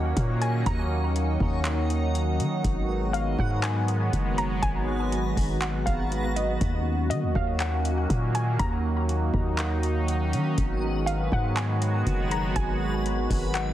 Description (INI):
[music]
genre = hip hop, atmospheric cloud-rap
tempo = 121 BPM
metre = 4/4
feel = half-time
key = Eb minor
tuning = A4 = 440 Hz
[part]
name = warbly dusty pluck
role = melody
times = 0.0-13.7 s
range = Eb5 to Bb5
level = -33 LUFS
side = equal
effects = chorus, tape echo
[part]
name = sweeping resonant pad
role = sustained chords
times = 0.0-13.7 s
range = Eb3 to Gb4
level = -29 LUFS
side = right 1 dB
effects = chorus, sidechain pumping
[part]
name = warm 808-style bass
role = bass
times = 0.0-13.7 s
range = Gb1 to Eb3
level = -27 LUFS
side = equal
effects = none
[part]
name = backwards swelling texture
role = texture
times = 0.0-13.7 s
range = Ab3 to Bb5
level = -37 LUFS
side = right 1 dB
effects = built-in reverb
[part]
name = booming analog drum machine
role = drums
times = 0.2-13.7 s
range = handclaps, hi-hat, kick drum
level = -30 LUFS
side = equal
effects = vintage 12-bit sampler grit
[sound]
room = little or no reverb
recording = heavily compressed radio sound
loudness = -23 LUFS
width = side -12 dB against mid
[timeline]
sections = 0.0-13.7 A section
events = none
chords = 0.0 Ebm7; 2.6 Abm7; 6.6 Ebm7; 10.6 Abm7